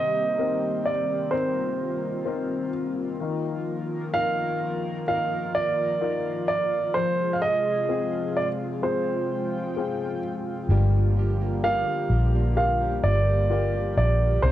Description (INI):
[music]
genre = pop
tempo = 64 BPM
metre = 4/4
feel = straight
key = unclear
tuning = A4 = 442 Hz
[part]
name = clear concert grand piano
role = melody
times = 0.0-14.5 s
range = C5 to F5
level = -25 LUFS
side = right 2 dB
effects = cassette tape
[part]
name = warm upright piano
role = accompaniment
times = 0.0-14.5 s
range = C3 to Bb4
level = -31 LUFS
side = left 8 dB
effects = cassette tape
[part]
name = airy breathy pad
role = sustained chords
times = 0.0-14.5 s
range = C3 to G5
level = -31 LUFS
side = equal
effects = chorus, cassette tape
[part]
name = fingerpicked plugged-in steel-string acoustic guitar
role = arpeggios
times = 10.7-14.5 s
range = G2 to Bb4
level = -36 LUFS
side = right 8 dB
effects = cassette tape
[part]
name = vintage muted fingered electric bass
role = bass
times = 10.7-14.5 s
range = G1 to C2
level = -22 LUFS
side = equal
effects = none
[sound]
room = moderate studio reverb, RT60 0.5 s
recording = home recording on cassette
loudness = -22 LUFS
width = side -13 dB against mid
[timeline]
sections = 0.0-14.5 A section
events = none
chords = 0.0 Cm7; 3.2 Ebsus2; 6.9 Fm; 10.7 Gm7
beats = 0.38 1.32 2.26 | 3.19 4.13 5.07 6.01 | 6.94 7.88 8.82 9.76 | 10.69 11.63 12.57 13.51 | 14.44